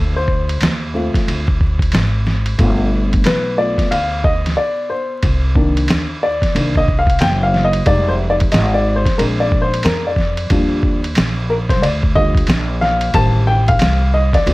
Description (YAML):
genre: hip hop, jazz-hop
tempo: 91 BPM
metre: 4/4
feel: swing 63% on 16ths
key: unclear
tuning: A4 = 440 Hz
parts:
  - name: dark upright piano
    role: accompaniment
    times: 0.0-14.5 s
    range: B2 to A5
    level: -18 LUFS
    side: left 1 dB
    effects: none
  - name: upright bass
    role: bass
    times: 0.0-14.5 s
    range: F1 to F2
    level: -18 LUFS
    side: equal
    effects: none
  - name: lo-fi sampler-style drum kit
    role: drums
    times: 0.3-14.5 s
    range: hi-hat, kick drum, ride cymbal, snare drum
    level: -18 LUFS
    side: equal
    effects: none
room: light reverb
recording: vinyl crackle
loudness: -13 LUFS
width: side -20 dB against mid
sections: 0.0-14.5 A section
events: upright piano solo 0.0-14.5; break 4.6-5.2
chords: 0.0 Dm7; 2.6 G7; 5.2 Cm7; 7.9 Fm7; 9.2 Bb7; 10.5 Ebmaj9; 13.1 Am7b5